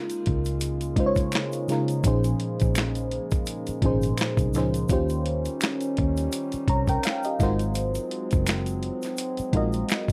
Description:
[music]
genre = R&B, neo-soul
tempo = 84 BPM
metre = 4/4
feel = swing 56% on 16ths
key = Bb minor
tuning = A4 = 436 Hz
[part]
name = mellow FM electric piano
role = accompaniment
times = 0.0-10.1 s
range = Bb2 to Bb5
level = -30 LUFS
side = equal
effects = chorus, phaser
[part]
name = warm brass ensemble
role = sustained chords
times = 0.0-10.1 s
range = Db3 to F4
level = -35 LUFS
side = equal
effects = none
[part]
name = dusty soul sampler-style drum kit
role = drums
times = 0.1-10.1 s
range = finger snaps, hi-hat, kick drum, snare drum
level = -29 LUFS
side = equal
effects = none
[part]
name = tube shaker and finger snaps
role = percussion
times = 0.1-10.1 s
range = none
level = -40 LUFS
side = equal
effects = none
[part]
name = vintage muted fingered electric bass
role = bass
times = 0.3-10.1 s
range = Gb1 to Eb2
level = -30 LUFS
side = equal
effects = none
[sound]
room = light reverb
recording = none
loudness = -25 LUFS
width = mono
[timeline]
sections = 0.0-10.1 A section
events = none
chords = 0.0 Db6; 2.0 Bbm11; 4.9 Eb13; 7.4 Ab13

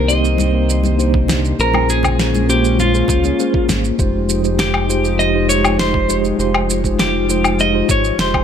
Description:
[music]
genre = sunset chillout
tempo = 100 BPM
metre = 4/4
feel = straight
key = F minor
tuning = A4 = 440 Hz
[part]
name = clean electric guitar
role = melody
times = 0.0-8.4 s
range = F4 to Eb5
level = -20 LUFS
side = left 1 dB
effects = tape echo
[part]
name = mellow tine electric piano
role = accompaniment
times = 0.0-8.4 s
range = Ab3 to Db5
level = -20 LUFS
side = equal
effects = medium stereo tremolo, auto-pan
[part]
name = airy breathy pad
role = sustained chords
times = 0.0-8.4 s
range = C3 to C5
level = -22 LUFS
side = equal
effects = chorus
[part]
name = round analog bass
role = bass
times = 0.0-8.4 s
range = F1 to Db2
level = -19 LUFS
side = equal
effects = none
[part]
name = electronic shaker, snare drum and woodblock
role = drums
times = 0.1-8.4 s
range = none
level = -20 LUFS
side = equal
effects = none
[part]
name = congas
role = percussion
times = 0.4-3.8 s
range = none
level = -26 LUFS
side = left 6 dB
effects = none
[part]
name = electronic kick drum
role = drums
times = 1.1-8.4 s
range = none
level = -20 LUFS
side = equal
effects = overdrive
[sound]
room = little or no reverb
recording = none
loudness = -13 LUFS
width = side -8 dB against mid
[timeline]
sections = 0.0-4.0 A section; 4.0-8.4 B section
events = none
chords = 0.0 Cm9; 1.6 Bbm9; 4.0 Fm9

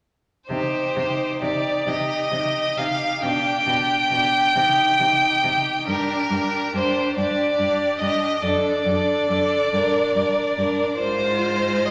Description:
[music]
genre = classical, slow romantic movement for string quartet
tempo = 43-48 BPM (dotted quarters)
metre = 6/8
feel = rubato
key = C minor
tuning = A4 = 440 Hz
[part]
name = rich violin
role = melody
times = 0.5-11.9 s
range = Bb4 to G5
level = -23 LUFS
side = equal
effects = none
[part]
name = rich violin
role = second line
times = 0.5-11.9 s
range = G4 to C5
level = -31 LUFS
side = equal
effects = none
[part]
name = rich viola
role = accompaniment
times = 0.5-11.9 s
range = D4 to F4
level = -30 LUFS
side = equal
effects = none
[part]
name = rich cello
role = bass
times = 0.5-11.9 s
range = F#2 to C3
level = -32 LUFS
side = equal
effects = none
[sound]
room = wet scoring stage reverb, RT60 2.0 s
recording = none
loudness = -21 LUFS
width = mono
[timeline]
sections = 0.5-11.9 A section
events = none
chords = 0.5 Cm; 3.2 G/B; 4.5 Cm; 5.9 Gm; 8.4 D; 9.7 Gm; 11.0 Fm/Ab

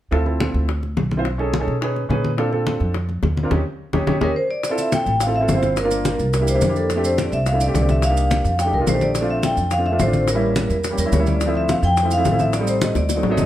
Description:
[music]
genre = Afro-Cuban jazz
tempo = 213 BPM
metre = 4/4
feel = straight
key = D minor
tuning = A4 = 442 Hz
[part]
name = warm upright piano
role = accompaniment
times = 0.1-13.5 s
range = F3 to C5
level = -23 LUFS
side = right 1 dB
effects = none
[part]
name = upright bass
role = bass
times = 0.1-13.5 s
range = G1 to B2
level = -22 LUFS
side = equal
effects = none
[part]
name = bongos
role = percussion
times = 0.1-13.4 s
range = none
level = -28 LUFS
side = left 4 dB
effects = none
[part]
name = congas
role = percussion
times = 0.1-13.5 s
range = none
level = -25 LUFS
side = left 1 dB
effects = none
[part]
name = vibraphone with medium hard mallets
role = melody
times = 4.2-13.5 s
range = A4 to G5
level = -22 LUFS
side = equal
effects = plate reverb
[part]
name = maracas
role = percussion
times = 4.6-13.5 s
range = none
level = -33 LUFS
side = right 5 dB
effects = none
[sound]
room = moderate studio reverb, RT60 0.9 s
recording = none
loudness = -17 LUFS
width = side -13 dB against mid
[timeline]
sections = 0.1-4.6 A section; 4.6-13.5 B section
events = band accent 3.5-4.6; upright piano fill 3.8-4.6; drum fill 3.9-4.6, 13.0-13.5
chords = 0.1 Dm7; 1.3 B13; 2.4 Bbmaj7; 3.5 Eb7; 4.6 G13sus4; 5.8 Gm7; 6.3 C7; 6.9 F69; 8.0 Cm7; 8.6 F13; 9.2 Bbmaj9; 10.3 A7b9; 11.4 Dm9; 12.5 Am7b5

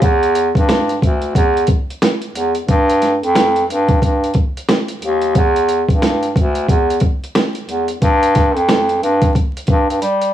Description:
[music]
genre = hip hop, boom-bap hip-hop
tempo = 90 BPM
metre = 4/4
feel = swing 61% on 16ths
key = E minor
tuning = A4 = 440 Hz
[part]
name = clear bass clarinet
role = bass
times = 0.0-10.3 s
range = D2 to G3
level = -15 LUFS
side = equal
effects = transformer saturation
[part]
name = dusty soul sampler-style drum kit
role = drums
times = 0.0-10.3 s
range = hi-hat, kick drum, snare drum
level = -16 LUFS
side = equal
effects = overdrive
[sound]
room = little or no reverb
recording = dry, gritty hardware recording, vinyl crackle, small room ambience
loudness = -13 LUFS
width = side -11 dB against mid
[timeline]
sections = 0.0-10.3 A section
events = drum fill 10.0-10.3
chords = none

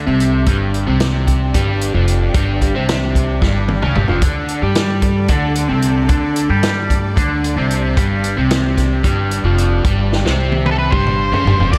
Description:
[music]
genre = psychedelic rock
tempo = 224 BPM (eighths)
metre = 7/8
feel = straight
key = unclear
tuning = A4 = 441 Hz
[part]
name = clear studio string section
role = sustained chords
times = 0.0-11.8 s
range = D3 to E5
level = -31 LUFS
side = equal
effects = none
[part]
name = crunchy overdriven guitar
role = riff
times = 0.0-11.8 s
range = F2 to G4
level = -21 LUFS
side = equal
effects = phaser
[part]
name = upright bass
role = bass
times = 0.0-11.8 s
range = F1 to G2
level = -20 LUFS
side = equal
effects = none
[part]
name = vintage drum kit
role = drums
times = 0.2-11.8 s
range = crash cymbal, hi-hat, kick drum, snare drum, toms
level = -20 LUFS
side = equal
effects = none
[part]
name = octave-fuzz lead guitar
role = melody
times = 10.7-11.8 s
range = A4 to D5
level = -20 LUFS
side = equal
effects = distortion, slapback echo
[sound]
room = light reverb, small room ambience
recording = none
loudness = -16 LUFS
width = mono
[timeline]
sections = 0.0-11.7 A section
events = drum fill 3.4-4.2, 10.1-11.7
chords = 0.5 G5; 4.2 D5; 8.0 G5

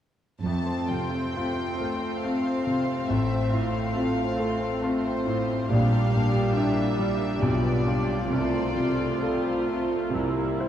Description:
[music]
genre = classical, romantic movement for piano and orchestra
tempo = 69 BPM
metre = 3/4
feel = uneven beats, rubato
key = F major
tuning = A4 = 441 Hz
[part]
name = warm symphonic violin section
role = melody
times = 0.4-10.1 s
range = C5 to A5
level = -34 LUFS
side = left 2 dB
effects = none
[part]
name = warm symphonic violin section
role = second line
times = 0.4-10.7 s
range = G3 to C5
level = -33 LUFS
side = left 2 dB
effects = none
[part]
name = rich studio viola section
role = accompaniment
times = 0.4-10.7 s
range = G3 to F4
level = -32 LUFS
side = right 3 dB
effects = none
[part]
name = mellow French horn section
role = sustained chords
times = 0.4-10.7 s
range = G3 to F4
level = -33 LUFS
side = left 1 dB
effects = none
[part]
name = warm studio cello section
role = bass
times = 0.4-10.7 s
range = F2 to C3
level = -31 LUFS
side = right 3 dB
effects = none
[part]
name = bright concert grand piano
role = melody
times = 0.5-10.7 s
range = A1 to C5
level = -26 LUFS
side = equal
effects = none
[sound]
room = wet church reverb, RT60 3.3 s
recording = dark, warm production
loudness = -23 LUFS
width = side -10 dB against mid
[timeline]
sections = 0.4-10.7 A section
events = none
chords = 0.4 F; 3.1 F/A; 5.7 Gm/Bb; 7.4 G7/B; 8.3 F/C; 10.1 C

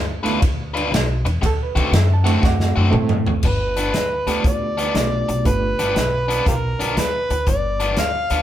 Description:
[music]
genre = electric blues shuffle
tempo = 119 BPM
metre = 4/4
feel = swing 66% on 8ths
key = G mixolydian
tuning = A4 = 440 Hz
[part]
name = barky reed electric piano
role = accompaniment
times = 0.0-5.8 s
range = A3 to A5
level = -24 LUFS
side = right 6 dB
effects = overdrive, fast tremolo
[part]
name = upright bass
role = bass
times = 0.0-8.4 s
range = F#1 to A2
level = -22 LUFS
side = equal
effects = none
[part]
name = biting overdriven guitar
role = riff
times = 0.2-8.4 s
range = G2 to B4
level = -25 LUFS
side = left 3 dB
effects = none
[part]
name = natural country drum kit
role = drums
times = 0.3-8.4 s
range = crash cymbal, hi-hat, kick drum, ride cymbal, snare drum, toms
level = -22 LUFS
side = equal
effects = none
[part]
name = overdriven harmonica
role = melody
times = 3.5-8.4 s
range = F4 to F5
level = -22 LUFS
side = equal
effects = none
[sound]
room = moderate large studio reverb, RT60 1.4 s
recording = band playing live in one room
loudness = -17 LUFS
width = side -12 dB against mid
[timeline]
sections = 0.0-3.4 A section; 3.4-8.4 B section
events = drum fill 2.4-3.4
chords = 0.0 G7; 1.4 D7; 3.4 G7

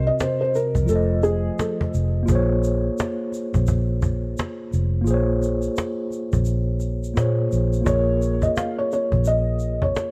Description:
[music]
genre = lo-fi hip hop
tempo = 86 BPM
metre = 4/4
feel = swing 60% on 16ths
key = Bb minor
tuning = A4 = 440 Hz
[part]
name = felt-muted upright piano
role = melody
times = 0.0-1.9, 7.9-10.1 s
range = Ab4 to F5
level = -26 LUFS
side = equal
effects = none
[part]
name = mellow tine electric piano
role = accompaniment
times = 0.0-10.1 s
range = C3 to Eb5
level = -28 LUFS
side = equal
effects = cassette tape
[part]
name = vintage muted fingered electric bass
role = bass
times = 0.0-9.9 s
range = F1 to Bb2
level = -24 LUFS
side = equal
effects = none
[part]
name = cajon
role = drums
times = 0.2-10.1 s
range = none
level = -28 LUFS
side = equal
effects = none
[part]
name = egg shaker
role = percussion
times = 0.2-10.1 s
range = none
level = -47 LUFS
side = equal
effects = none
[sound]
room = light reverb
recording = cassette tape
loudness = -22 LUFS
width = mono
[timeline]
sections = 0.0-7.9 A section; 7.9-10.1 B section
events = kick muted 6.5-7.9; hi-hats muted 7.9-10.1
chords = 0.0 Cm7b5; 0.9 F7; 2.3 Bbm7

